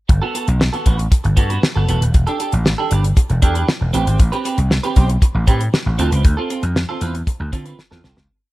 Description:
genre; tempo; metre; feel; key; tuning
early-eighties boogie funk; 117 BPM; 4/4; straight; G major; A4 = 440 Hz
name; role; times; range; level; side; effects
clean electric guitar; riff; 0.1-8.2 s; B3 to C5; -23 LUFS; right 4 dB; lush chorus
vintage slap bass; bass; 0.1-8.3 s; Eb1 to D3; -17 LUFS; equal; none
damped 70s drum kit; drums; 0.1-8.3 s; hi-hat, kick drum, snare drum; -16 LUFS; equal; none
room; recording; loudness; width
small room ambience; lossy compression artefacts; -14 LUFS; side -18 dB against mid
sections
0.1-8.3 breakdown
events
fade-out 6.2-8.3; drum fill 7.8-8.3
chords
0.1 Gmaj9; 2.1 Em7; 3.9 Am9; 6.0 Dm7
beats
| 0.09 0.61 1.12 1.63 | 2.14 2.66 3.17 3.68 | 4.20 4.71 5.22 5.73 | 6.25 6.76 7.27 7.79

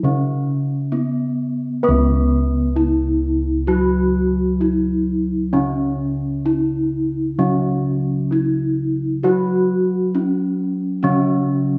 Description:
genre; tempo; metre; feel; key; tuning
Javanese gamelan; 65 BPM; 4/4; straight; unclear; A4 = 440 Hz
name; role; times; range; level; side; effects
gamelan-type bronze metallophone; melody; 0.0-11.8 s; B3-25c to F#4; -23 LUFS; equal; none
gamelan-type bronze metallophone; accompaniment; 0.0-11.8 s; C#3 to B3-25c; -24 LUFS; equal; none
gamelan-type bossed gongs; bass; 0.0-11.8 s; C#2 to B4-25c; -24 LUFS; equal; none
room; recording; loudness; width
moderate recital hall reverb, RT60 1.7 s; heard from further back in the room; -19 LUFS; mono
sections
0.0-1.8 A section; 1.8-11.8 B section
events
none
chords
none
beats
0.03 0.92 | 1.84 2.76 3.69 4.62 | 5.54 6.47 7.39 8.32 | 9.25 10.16 11.05

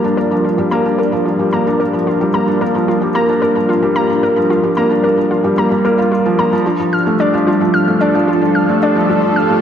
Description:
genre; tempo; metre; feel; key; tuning
piano and strings electronica; 111 BPM; 4/4; straight; G minor; A4 = 440 Hz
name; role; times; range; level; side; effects
lush unison pad; sustained chords; 0.0-9.6 s; G3 to Bb4; -20 LUFS; right 1 dB; chorus, phaser
felt-muted upright piano; riff; 0.0-9.6 s; F3 to F4; -14 LUFS; equal; digital delay
warbly dusty pluck; arpeggios; 0.2-9.4 s; F4 to F6; -20 LUFS; left 2 dB; chorus, digital delay
room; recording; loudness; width
wet lush hall reverb, RT60 2.5 s; lossy compression artefacts; -12 LUFS; side -8 dB against mid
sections
0.0-9.6 A section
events
build-up 0.0-9.6; filter sweep on analog synth pad 0.0-9.6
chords
0.0 Gm7; 6.5 Dm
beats
| 0.04 0.58 1.12 1.66 | 2.20 2.75 3.29 3.83 | 4.37 4.91 5.45 5.99 | 6.53 7.07 7.61 8.15 | 8.69 9.23

